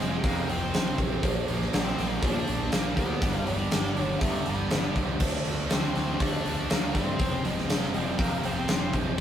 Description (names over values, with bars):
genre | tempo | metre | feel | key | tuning
quiet-loud alternative rock | 121 BPM | 4/4 | straight | unclear | A4 = 440 Hz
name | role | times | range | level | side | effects
octave-fuzz lead guitar | melody | 0.0-8.9 s | G3 to D5 | -33 LUFS | left 1 dB | distortion
distorted electric guitar | riff | 0.0-9.2 s | F2 to D4 | -33 LUFS | right 5 dB | overdrive
sludgy distorted guitar | riff | 0.0-9.2 s | F2 to D4 | -34 LUFS | left 3 dB | overdrive
growling picked electric bass | bass | 0.0-9.1 s | F1 to D3 | -34 LUFS | equal | overdrive
huge arena drum kit | drums | 0.0-9.2 s | crash cymbal, hi-hat, kick drum, snare drum | -28 LUFS | equal | none
room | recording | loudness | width
light reverb | rough rehearsal-room recording | -25 LUFS | side -10 dB against mid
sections
0.0-9.2 A section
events
none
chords
0.0 Fm; 1.2 Bb; 3.2 G; 5.2 Dm; 7.2 Fm